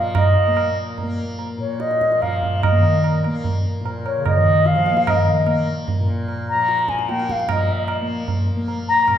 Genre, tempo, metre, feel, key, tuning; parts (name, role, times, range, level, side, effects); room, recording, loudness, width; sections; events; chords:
indian classical, Hindustani; 148 BPM; 3/4; straight; A4 = 440 Hz
mellow bansuri; melody; 0.0-9.2 s; Db5 to Bb5; -19 LUFS; equal
tanpura; drone; 0.0-9.2 s; Bb2 to Bb3; -28 LUFS; left 1 dB
tabla; percussion; 0.1-9.2 s; -21 LUFS; right 1 dB
mellow bass clarinet; second line; 2.7-5.8 s; Db3 to F3; -23 LUFS; left 2 dB
wet recital hall reverb, RT60 1.6 s; recorded in a church or concert hall; -17 LUFS; side -10 dB against mid
0.0-7.5 A section; 7.5-9.2 B section
speeding up 0.0-9.2